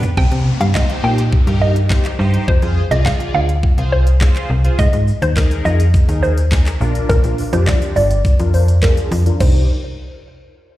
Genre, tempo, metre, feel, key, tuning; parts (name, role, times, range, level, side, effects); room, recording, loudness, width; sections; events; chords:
dance-pop; 104 BPM; 4/4; straight; C minor; A4 = 437 Hz
pop drum kit; drums; 0.0-9.5 s; crash cymbal, handclaps, hi-hat, kick drum, shaker, snare drum, toms; -15 LUFS; equal
tube shaker; percussion; 0.0-0.2, 4.8-9.7 s; -40 LUFS; left 3 dB
hollow square pluck; melody; 0.2-9.7 s; Bb4 to G5; -22 LUFS; equal; chorus, sidechain pumping, low-pass filter, slapback echo, ping-pong delay
slap-like FM bass; bass; 0.2-9.7 s; G1 to C3; -15 LUFS; equal; sidechain pumping
downlifter; sound effects; 0.2-4.8 s; -29 LUFS; equal; slapback echo
big bright polysynth; accompaniment; 0.7-9.7 s; D4 to D5; -25 LUFS; left 1 dB; chorus, phaser, sidechain pumping, low-pass filter, slapback echo
digital ambience; live gig heard through the venue's PA, recital hall reverb; -12 LUFS; side -15 dB against mid
0.2-9.4 A section; 9.4-10.8 B section
drum fill 0.0; filter sweep 0.2-9.4
0.2 Cm; 2.5 Fm; 4.8 Absus2; 6.8 Bb; 9.4 Cm